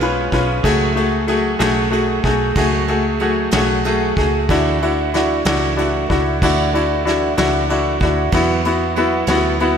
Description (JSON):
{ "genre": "six-eight pop ballad", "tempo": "62 BPM (dotted quarters)", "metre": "6/8", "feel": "straight", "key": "F# minor", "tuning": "A4 = 444 Hz", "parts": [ { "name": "clear grand piano", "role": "accompaniment", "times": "0.0-9.8 s", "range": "A3 to B4", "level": "-17 LUFS", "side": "left 2 dB", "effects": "none" }, { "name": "direct-recorded clean electric guitar", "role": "arpeggios", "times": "0.0-9.8 s", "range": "C#3 to G#4", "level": "-24 LUFS", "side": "right 9 dB", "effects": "none" }, { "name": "vintage muted fingered electric bass", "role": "bass", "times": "0.0-9.8 s", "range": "B1 to E2", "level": "-22 LUFS", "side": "right 1 dB", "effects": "none" }, { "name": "vintage brush drum kit", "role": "drums", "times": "0.0-9.7 s", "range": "kick drum, ride cymbal, snare drum", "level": "-23 LUFS", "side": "right 1 dB", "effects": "none" } ], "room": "moderate lush hall reverb, RT60 2.5 s", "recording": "big arena sound", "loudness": "-14 LUFS", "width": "side -7 dB against mid", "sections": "0.0-9.8 A section", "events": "none", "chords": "0.0 C#7; 0.6 F#madd9; 4.5 Dadd9; 8.3 Esus2" }